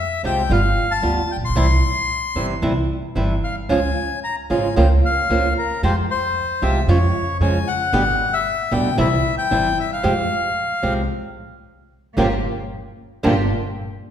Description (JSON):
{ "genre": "tango", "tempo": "113 BPM", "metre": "4/4", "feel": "rubato", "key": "F harmonic minor", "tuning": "A4 = 440 Hz", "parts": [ { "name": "bandoneon", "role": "melody", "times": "0.0-10.9 s", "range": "Bb4 to C6", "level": "-22 LUFS", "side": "left 4 dB", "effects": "none" }, { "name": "flamenco guitar", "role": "accompaniment", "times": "0.2-13.3 s", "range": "B2 to G4", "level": "-22 LUFS", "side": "right 2 dB", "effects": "none" }, { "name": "upright bass", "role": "bass", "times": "0.2-13.5 s", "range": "G1 to F2", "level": "-21 LUFS", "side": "right 1 dB", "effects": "none" }, { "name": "rich symphonic string section", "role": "stabs", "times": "12.2-13.5 s", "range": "Bb3 to G4", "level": "-29 LUFS", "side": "equal", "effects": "none" } ], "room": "wet recital hall reverb, RT60 1.5 s", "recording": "recorded in a church or concert hall", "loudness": "-17 LUFS", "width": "side -9 dB against mid", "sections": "0.0-12.2 A section; 12.2-14.1 B section", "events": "stop 11.1-12.2", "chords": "0.0 Fmadd9; 0.5 G7; 1.6 C; 3.7 Db; 4.8 Bbmadd9/Db; 5.8 Fmadd9; 6.9 Db/F; 7.9 G; 9.0 C; 10.0 Fmadd9; 12.2 Gm7" }